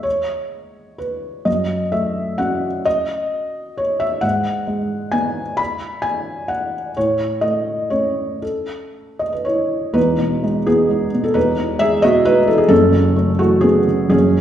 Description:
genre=neoclassical minimalist piano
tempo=114-136 BPM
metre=3/4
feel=rubato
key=unclear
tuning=A4 = 439 Hz
part: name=felt-muted upright piano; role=solo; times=0.0-14.4 s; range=E1 to B5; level=-16 LUFS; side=equal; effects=none
room=wet recital hall reverb, RT60 1.3 s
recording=heard from further back in the room, nothing above 10.9 kHz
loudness=-16 LUFS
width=side -10 dB against mid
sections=0.0-10.0 A section; 10.0-14.4 B section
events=none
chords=0.0 E (rootless); 1.5 F#m7; 4.2 G#m7; 7.0 A; 10.0 Emaj7; 12.7 F#m7

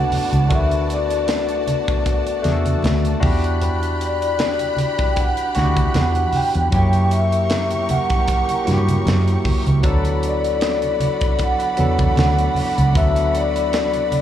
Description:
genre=lush 1970s-style soul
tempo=77 BPM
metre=4/4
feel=swing 54% on 16ths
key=unclear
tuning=A4 = 440 Hz
part: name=vibraphone with soft mallets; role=melody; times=0.0-14.2 s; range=D5 to G5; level=-21 LUFS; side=left 1 dB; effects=slapback echo, analog delay
part: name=warm studio violin section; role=second line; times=0.0-14.2 s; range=F#4 to F#6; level=-28 LUFS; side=left 1 dB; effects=slapback echo
part: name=barky tine electric piano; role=accompaniment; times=0.0-14.2 s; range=F#3 to B4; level=-25 LUFS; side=left 2 dB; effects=overdrive, phaser, slapback echo
part: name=dark studio string section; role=sustained chords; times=0.0-14.2 s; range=D3 to F#5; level=-34 LUFS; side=equal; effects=none
part: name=vintage muted fingered electric bass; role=bass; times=0.0-14.2 s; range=C#2 to G2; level=-19 LUFS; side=equal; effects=none
part: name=tight funk drum kit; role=drums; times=0.1-14.2 s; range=hi-hat, kick drum, snare drum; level=-23 LUFS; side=equal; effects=none
part: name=congas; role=percussion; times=0.1-14.2 s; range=none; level=-26 LUFS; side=right 3 dB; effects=none
room=small room reverb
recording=live gig heard through the venue's PA, club reverb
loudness=-16 LUFS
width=side -10 dB against mid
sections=0.0-14.2 A section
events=none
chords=0.0 D6; 3.2 Em9; 6.7 F#7b9; 9.8 D6

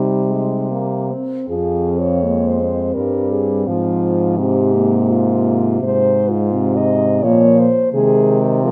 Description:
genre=classical, lyrical piece for horn quartet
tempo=84 BPM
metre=3/4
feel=rubato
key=F minor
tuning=A4 = 440 Hz
part: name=mellow French horn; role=melody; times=0.0-8.7 s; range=Eb4 to Eb5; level=-21 LUFS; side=equal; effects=none
part: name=dark French horn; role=second line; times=0.0-8.7 s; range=G3 to C4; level=-22 LUFS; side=equal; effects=none
part: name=mellow French horn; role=accompaniment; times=0.0-8.7 s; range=C3 to C4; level=-24 LUFS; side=equal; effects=none
part: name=warm French horn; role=bass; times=0.0-8.7 s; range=F2 to C3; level=-22 LUFS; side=equal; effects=none
room=moderate recital hall reverb, RT60 1.4 s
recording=dark, warm production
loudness=-16 LUFS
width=mono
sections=0.0-1.5 A section; 1.5-8.7 B section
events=none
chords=0.0 Cm; 1.5 Fm; 3.7 Fm/Ab; 7.9 Ab/C

